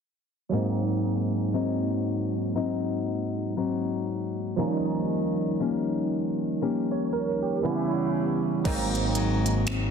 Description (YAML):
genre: contemporary R&B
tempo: 59 BPM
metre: 4/4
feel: swing 58% on 16ths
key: unclear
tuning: A4 = 443 Hz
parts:
  - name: barky tine electric piano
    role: accompaniment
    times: 0.5-9.9 s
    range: E3 to Db5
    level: -27 LUFS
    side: right 5 dB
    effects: ensemble chorus
  - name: nylon-string guitar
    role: arpeggios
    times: 0.5-9.9 s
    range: Ab2 to G4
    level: -28 LUFS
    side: left 6 dB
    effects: ping-pong delay
  - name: picked electric bass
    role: bass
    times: 8.7-9.9 s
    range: Ab1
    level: -28 LUFS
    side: equal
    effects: none
  - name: smooth R&B drum kit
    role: drums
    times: 8.7-9.9 s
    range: crash cymbal, finger snaps, hi-hat, kick drum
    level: -31 LUFS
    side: equal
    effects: soft clipping on snare
room: light reverb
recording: dense, heavily limited modern master, low-pass filter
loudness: -25 LUFS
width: side -6 dB against mid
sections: 0.5-8.7 A section; 8.7-9.9 B section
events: filter sweep 0.5-8.7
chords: 0.5 Ab7; 4.6 Eb7; 7.6 C#m7b5; 8.7 Ab7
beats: | 0.52 1.53 2.55 3.57 | 4.58 5.60 6.62 7.63 | 8.65 9.67